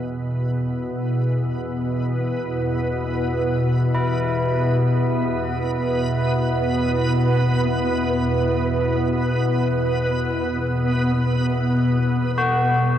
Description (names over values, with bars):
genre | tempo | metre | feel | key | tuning
dark ambient drone | free time | none | none | E minor | A4 = 440 Hz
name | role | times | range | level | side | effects
deep dark ambient pad | sustained chords | 0.0-12.0 s | E4 to F#5 | -27 LUFS | right 2 dB | chorus, built-in reverb
organ-like drone | drone | 0.0-13.0 s | E2 to B2 | -22 LUFS | left 1 dB | ensemble chorus, built-in reverb
backwards swelling texture | texture | 0.0-13.0 s | G3 to B4 | -26 LUFS | right 1 dB | built-in reverb
tubular bells | arpeggios | 3.9-13.0 s | E4 to F#4 | -28 LUFS | left 2 dB | diffuse ambient delay
room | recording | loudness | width
wet huge ambient reverb, RT60 8.5 s | dark, warm production | -19 LUFS | side -10 dB against mid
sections
0.0-11.9 A section; 11.9-13.0 B section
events
fade-in on ambient pad 0.0-11.9; fade-in on synth texture 0.0-11.9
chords
0.0 Esus2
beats
free time